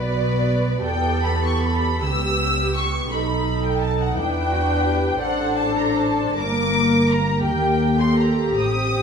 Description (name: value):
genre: classical, slow romantic movement for string orchestra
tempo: 48-60 BPM (dotted quarters)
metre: 6/8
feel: rubato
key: unclear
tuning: A4 = 440 Hz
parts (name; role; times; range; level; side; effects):
- dark studio violin section; melody; 0.0-9.0 s; D5 to E6; -26 LUFS; equal; none
- dark studio violin section; second line; 0.0-9.0 s; D5 to E6; -28 LUFS; left 2 dB; none
- warm studio viola section; accompaniment; 0.0-9.0 s; Bb3 to C5; -23 LUFS; left 1 dB; none
- dark studio cello section; bass; 0.0-9.0 s; D#4 to B4; -27 LUFS; equal; none
- warm studio double bass section; bass; 0.0-9.0 s; G1 to E2; -24 LUFS; right 2 dB; none
room: wet stone room reverb, RT60 1.4 s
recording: none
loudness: -18 LUFS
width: side -6 dB against mid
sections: 0.0-9.0 A section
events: none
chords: 0.0 Bm; 0.8 Em; 3.1 B7; 4.2 Em7; 5.2 D5/A; 6.4 Gm; 7.4 Eb